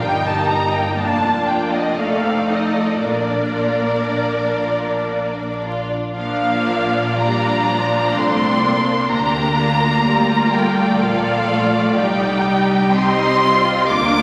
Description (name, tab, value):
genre	classical, slow romantic movement for string orchestra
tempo	56-66 BPM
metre	3/4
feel	rubato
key	Bb major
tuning	A4 = 439 Hz
part	dark symphonic violin section	melody	0.0-14.2 s	D5 to D6	-22 LUFS	equal	none
part	rich studio violin section	second line	0.0-14.2 s	G3 to Eb5	-26 LUFS	equal	none
part	clear symphonic viola section	accompaniment	0.0-14.2 s	F3 to F4	-24 LUFS	equal	none
part	clear symphonic double bass section	bass	0.0-14.2 s	F1 to D2	-28 LUFS	equal	none
part	rich symphonic cello section	bass	0.0-14.2 s	F3 to Bb4	-26 LUFS	equal	none
room	wet concert hall reverb, RT60 2.1 s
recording	vinyl crackle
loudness	-18 LUFS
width	mono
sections	0.0-6.2 A section; 6.2-14.2 B section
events	none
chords	0.0 Eb/G; 1.0 Bb/F; 2.0 F6; 3.0 Bb; 9.1 Bb/D; 12.0 Cm